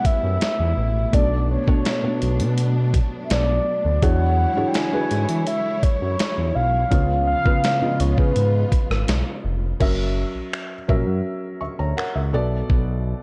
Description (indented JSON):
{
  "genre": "contemporary R&B",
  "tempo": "83 BPM",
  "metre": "4/4",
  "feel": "straight",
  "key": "unclear",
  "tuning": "A4 = 440 Hz",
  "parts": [
    { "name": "mellow horn-like synth lead", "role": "melody", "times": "0.0-9.4 s", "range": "B4 to G#5", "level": "-27 LUFS", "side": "equal", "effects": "chorus" },
    { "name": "felt-muted upright piano", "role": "accompaniment", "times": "0.0-13.2 s", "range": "A2 to C#6", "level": "-29 LUFS", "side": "equal", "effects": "none" },
    { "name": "warm symphonic string section", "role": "sustained chords", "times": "0.0-9.8 s", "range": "B2 to C#5", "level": "-33 LUFS", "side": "equal", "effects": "sidechain pumping" },
    { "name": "smooth synth bass", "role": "bass", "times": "0.0-13.1 s", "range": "E#1 to E3", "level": "-24 LUFS", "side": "equal", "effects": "none" },
    { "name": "dusty soul sampler-style drum kit", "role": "drums", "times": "0.0-12.9 s", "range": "crash cymbal, finger snaps, hi-hat, kick drum, rim click, snare drum", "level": "-25 LUFS", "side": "equal", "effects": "none" }
  ],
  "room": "light reverb, digital ambience",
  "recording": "worn, warbling old tape, cassette tape, warbly pitch drift",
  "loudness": "-21 LUFS",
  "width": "mono",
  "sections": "0.0-9.8 A section; 9.8-13.2 B section",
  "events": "break 9.8-13.2",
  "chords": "0.0 A9; 1.1 Bm9; 4.0 E13; 6.9 C#7; 9.8 F#7; 12.3 Bm7",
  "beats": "0.41 | 1.13 1.85 2.58 3.30 | 4.02 4.75 5.47 6.19 | 6.92 7.64 8.36 9.08 | 9.81 10.53 11.25 11.97 | 12.70"
}